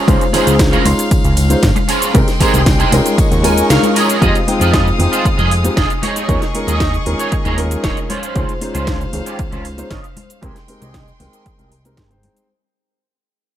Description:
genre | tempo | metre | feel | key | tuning
nu-disco, nu disco | 116 BPM | 4/4 | straight | unclear | A4 = 440 Hz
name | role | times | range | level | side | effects
bright studio violin section | sustained chords | 0.0-12.5 s | Ab3 to Eb6 | -25 LUFS | left 2 dB | sidechain pumping
electric guitar at the edge of break-up | riff | 0.0-12.3 s | Db4 to Ab5 | -19 LUFS | right 3 dB | ensemble chorus, low-pass filter, digital delay
dark concert grand piano | accompaniment | 0.1-12.5 s | Ab3 to C6 | -19 LUFS | left 1 dB | sidechain pumping, digital delay
fat analog bass | bass | 0.1-12.3 s | Eb1 to F2 | -17 LUFS | equal | tube saturation
electronic kick drum | drums | 0.1-12.1 s | none | -17 LUFS | equal | overdrive
house drum kit | drums | 0.1-12.5 s | hi-hat, ride cymbal, shaker, snare drum | -22 LUFS | equal | overdrive
tambourine and congas | percussion | 0.1-12.3 s | none | -25 LUFS | left 4 dB | none
room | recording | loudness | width
light reverb, digital ambience | none | -12 LUFS | side -11 dB against mid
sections
0.0-4.2 A section; 4.2-12.5 B section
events
drop 0.0-4.2; clean electric guitar fill 3.2-4.2; kick drops out 3.7-4.2; band accent 3.7; fade-out 4.2-12.5; filter sweep on clean electric guitar 4.2-12.5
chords
0.0 Dbmaj7; 2.1 Abmaj7/C; 3.2 Eb7sus4; 4.2 Fm7; 6.0 Eb7sus4; 8.1 Dbmaj7; 10.4 Abmaj7/C

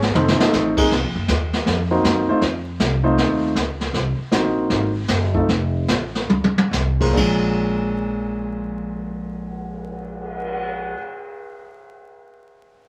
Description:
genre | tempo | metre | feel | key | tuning
jazz piano trio | 134-159 BPM | 4/4 | swing 65% on 8ths | Bb minor | A4 = 442 Hz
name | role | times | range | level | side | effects
upright bass | bass | 0.0-10.9 s | F1 to Gb2 | -27 LUFS | equal | none
jazz brush drum kit | drums | 0.0-10.6 s | brushed snare drum, crash cymbal, cymbal swell, hi-hat, kick drum, snare drum, toms | -24 LUFS | equal | none
warm grand piano | melody | 0.2-11.0 s | Bb2 to C5 | -23 LUFS | equal | none
room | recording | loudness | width
wet small room ambience, RT60 0.5 s | vinyl crackle | -20 LUFS | mono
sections
0.9-7.2 A section; 7.2-10.7 B section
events
drum fill 0.1-0.5, 6.3-6.7; slowing down 3.9-7.2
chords
0.1 F7; 0.9 Cm7b5; 2.4 F7; 3.9 Cm7b5; 5.5 F; 7.2 Bbm7

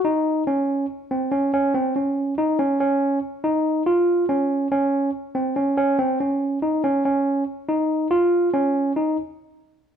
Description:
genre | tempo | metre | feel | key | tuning
progressive instrumental, progressive | 141 BPM | 5/4 | straight | unclear | A4 = 440 Hz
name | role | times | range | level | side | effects
overdriven tine electric piano | solo | 0.0-9.2 s | C4 to F4 | -19 LUFS | right 1 dB | none
room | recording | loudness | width
moderate large studio reverb, RT60 1.0 s | band playing live in one room | -19 LUFS | side -8 dB against mid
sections
0.0-9.0 A section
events
none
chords
none

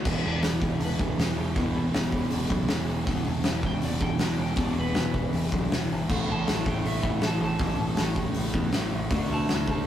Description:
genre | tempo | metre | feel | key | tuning
garage rock duo or trio | 159 BPM | 4/4 | straight | E minor | A4 = 439 Hz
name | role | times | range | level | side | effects
fuzz guitar | riff | 0.0-9.9 s | E2 to D4 | -29 LUFS | equal | distortion
growling picked electric bass | bass | 0.1-9.8 s | E1 to E2 | -31 LUFS | equal | overdrive
oversized low-tuned drum kit | drums | 0.1-9.8 s | crash cymbal, hi-hat, kick drum, snare drum | -28 LUFS | equal | none
electric slide guitar | melody | 0.3-9.9 s | E4 to A5 | -36 LUFS | right 1 dB | none
room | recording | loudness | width
light reverb | rough rehearsal-room recording | -24 LUFS | side -11 dB against mid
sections
0.1-9.9 A section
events
none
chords
0.1 E5; 6.1 A5; 9.1 D5

